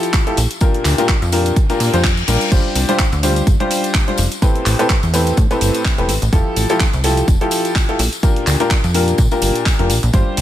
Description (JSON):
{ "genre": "piano house", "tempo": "126 BPM", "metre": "4/4", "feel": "swing 56% on 16ths", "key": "unclear", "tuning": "A4 = 440 Hz", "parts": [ { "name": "clear upright piano", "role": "riff", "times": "0.0-10.4 s", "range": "A2 to C5", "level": "-18 LUFS", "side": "left 1 dB", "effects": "sidechain pumping, digital delay" }, { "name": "house drum kit", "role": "drums", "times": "0.0-10.4 s", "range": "crash cymbal, handclaps, hi-hat", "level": "-23 LUFS", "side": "right 2 dB", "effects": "none" }, { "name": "tambourine", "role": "percussion", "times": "0.0-10.4 s", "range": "none", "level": "-28 LUFS", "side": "left 8 dB", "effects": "none" }, { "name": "electronic kick drum", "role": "drums", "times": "0.1-10.2 s", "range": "none", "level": "-15 LUFS", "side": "equal", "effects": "none" }, { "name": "plucky analog bass", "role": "bass", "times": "0.4-10.4 s", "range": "E1 to Bb2", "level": "-17 LUFS", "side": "equal", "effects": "sidechain pumping" }, { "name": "reverse cymbal", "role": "sound effects", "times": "1.7-2.5 s", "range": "none", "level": "-26 LUFS", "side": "left 4 dB", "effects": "none" } ], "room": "digital ambience", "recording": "none", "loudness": "-13 LUFS", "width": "side -12 dB against mid", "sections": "0.0-10.4 A section", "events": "reverse cymbal 1.7-2.5", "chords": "0.4 Bb6; 2.5 G7sus4; 4.4 Am9; 6.3 Fmaj9; 8.0 Bb6", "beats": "0.14 | 0.61 1.09 1.56 2.04 | 2.52 2.99 3.47 3.94 | 4.42 4.90 5.37 5.85 | 6.33 6.80 7.28 7.75 | 8.23 8.71 9.18 9.66 | 10.14" }